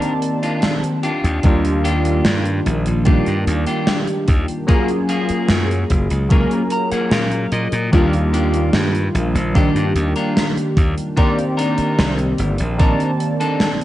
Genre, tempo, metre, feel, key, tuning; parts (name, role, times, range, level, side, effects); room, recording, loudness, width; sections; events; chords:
vaporwave; 74 BPM; 4/4; straight; A4 = 436 Hz
warbly lo-fi synth keys; accompaniment; 0.0-13.8 s; Eb3 to A5; -19 LUFS; equal; wide subtle chorus, vintage 12-bit sampler grit, tape echo
electric guitar at the edge of break-up; riff; 0.0-13.7 s; Bb3 to Bb5; -24 LUFS; left 1 dB; wide subtle chorus, tape echo
gated 80s drum kit; drums; 0.0-13.8 s; hi-hat, snare drum; -22 LUFS; equal; gated reverb
glassy slap bass; bass; 1.2-12.9 s; Gb1 to Bb2; -19 LUFS; equal
electronic kick drum; drums; 1.4-13.0 s; -15 LUFS; equal; overdrive
light reverb, small room ambience; cassette tape, nothing above 10.6 kHz; -15 LUFS; side -14 dB against mid
0.0-13.8 A section
clean electric guitar fill 6.3-7.9
0.0 Cm9; 1.0 Ebmaj9; 4.7 Gbmaj9; 7.9 Ebmaj9; 11.2 Cm9